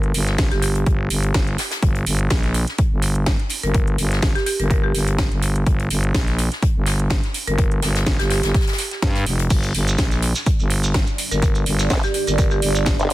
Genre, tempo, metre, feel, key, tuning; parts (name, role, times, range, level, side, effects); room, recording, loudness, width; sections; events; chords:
bass house; 125 BPM; 4/4; swing 54% on 16ths; G minor; A4 = 440 Hz
growling FM bass; bass; 0.0-13.0 s; F1 to G2; -20 LUFS; equal; tube saturation, sidechain pumping
house drum kit; drums; 0.0-13.1 s; crash cymbal, hi-hat, snare drum; -26 LUFS; right 2 dB
natural country drum kit; drums; 0.1-13.1 s; hi-hat, snare drum; -30 LUFS; left 3 dB; sidechain pumping on hats, high-pass filter on hats, high-pass filter on snare, high-pass filter on room
electronic kick drum; drums; 0.4-13.0 s; -20 LUFS; equal
marimba with medium hard mallets; melody; 0.5-0.7, 3.6-8.4, 11.3-13.1 s; G4 to Bb4; -27 LUFS; equal; dub echo
deep dark ambient pad; sustained chords; 11.1-13.1 s; G3 to D5; -28 LUFS; right 4 dB; chorus, built-in reverb, sidechain pumping
maracas; percussion; 9.5-13.1 s; -29 LUFS; right 3 dB
formant-sweep wobble bass; bass; 11.9-13.1 s; G1; -20 LUFS; equal; chorus, sidechain pumping
studio reverb; dense, heavily limited modern master; -17 LUFS; side -16 dB against mid
0.0-13.1 A section
0.0 G5